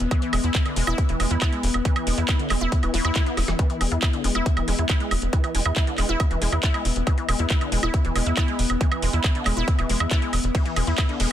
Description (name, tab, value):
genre	psychedelic trance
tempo	138 BPM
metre	4/4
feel	straight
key	E major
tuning	A4 = 439 Hz
part	evolving wavetable pad	sustained chords	0.0-11.3 s	B3	-30 LUFS	left 4 dB	chorus, built-in reverb, sidechain pumping
part	tight sequencer bass	bass	0.0-11.3 s	E1 to E2	-24 LUFS	equal	none
part	drum and bass drum kit	drums	0.0-11.3 s	handclaps, hi-hat, ride cymbal, snare drum, woodblock	-28 LUFS	right 2 dB	none
part	wide unison pluck	riff	0.1-11.3 s	D3 to E4	-28 LUFS	moving between left 4 dB and right 6 dB	auto-pan, sidechain pumping, dub echo
part	electronic kick drum	drums	0.1-11.1 s	none	-22 LUFS	equal	none
part	swell	sound effects	2.9-3.6 s	none	-36 LUFS	equal	none
room	little or no reverb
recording	dense, heavily limited modern master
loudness	-20 LUFS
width	side -11 dB against mid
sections	0.0-11.3 A section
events	swell 2.9-3.6; drum fill 3.4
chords	0.0 E5